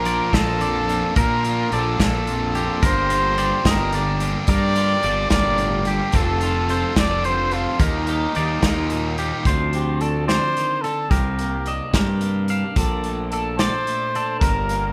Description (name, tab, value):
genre	math rock and midwest emo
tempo	72 BPM (dotted quarters)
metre	6/8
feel	straight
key	unclear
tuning	A4 = 441 Hz
part	clear trumpet	melody	0.0-14.9 s	Eb4 to D5	-26 LUFS	equal	none
part	twelve-string electric guitar	accompaniment	0.0-14.9 s	Eb2 to A4	-31 LUFS	equal	none
part	twangy electric guitar	arpeggios	0.0-14.9 s	G4 to F5	-31 LUFS	equal	none
part	biting overdriven guitar	riff	0.0-9.4 s	Eb2 to A4	-30 LUFS	equal	none
part	fuzz fingered electric bass	bass	0.0-14.9 s	F1 to Bb2	-27 LUFS	equal	overdrive
part	loose indie drum kit	drums	0.1-14.8 s	hi-hat, kick drum, snare drum	-24 LUFS	equal	none
room	moderate recital hall reverb, RT60 1.5 s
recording	recorded in a church or concert hall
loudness	-20 LUFS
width	mono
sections	0.0-9.5 A section; 9.5-14.9 B section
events	none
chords	0.0 Bbmaj7; 2.8 Gm7; 6.1 Dm7/F; 7.8 Ebmaj9; 9.5 Dm7; 11.1 Cm9; 12.8 Bbmaj7; 14.4 Gm